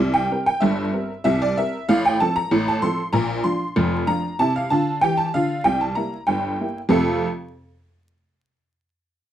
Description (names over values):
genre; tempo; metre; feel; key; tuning
ragtime piano; 95 BPM; 2/4; straight; F major; A4 = 440 Hz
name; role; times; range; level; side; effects
honky-tonk upright piano; solo; 0.0-7.3 s; F1 to C6; -19 LUFS; right 1 dB; none
room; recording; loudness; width
light reverb; close, detailed microphones, vinyl crackle; -19 LUFS; side -11 dB against mid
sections
0.0-6.9 A section; 6.9-8.2 B section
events
none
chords
0.0 C7; 1.9 F/A; 3.1 Bb; 4.4 F5/C; 5.6 C7; 6.9 F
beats
| 0.60 1.23 | 1.86 2.49 | 3.12 3.75 | 4.37 5.00 | 5.63 6.27 | 6.90